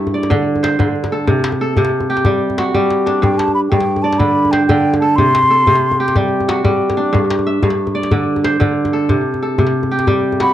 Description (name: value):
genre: west african traditional, West African string and xylophone music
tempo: 123 BPM (dotted quarters)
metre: 12/8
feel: straight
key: unclear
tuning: A4 = 440 Hz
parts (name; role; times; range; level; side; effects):
- kora; arpeggios; 0.0-10.5 s; G2 to E5; -15 LUFS; right 1 dB; slapback echo
- djembe; percussion; 0.1-10.5 s; none; -19 LUFS; left 2 dB; none
- mellow hollow silver concert flute; melody; 3.2-6.1, 10.4-10.5 s; G5 to C6; -14 LUFS; equal; none
room: small room reverb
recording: dry, close 1970s-style studio recording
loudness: -13 LUFS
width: side -12 dB against mid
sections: 0.0-10.5 A section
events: drum fill 2.7-3.2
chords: 0.0 G5; 1.3 C5; 3.2 G; 5.2 C5; 7.1 G5; 9.1 C5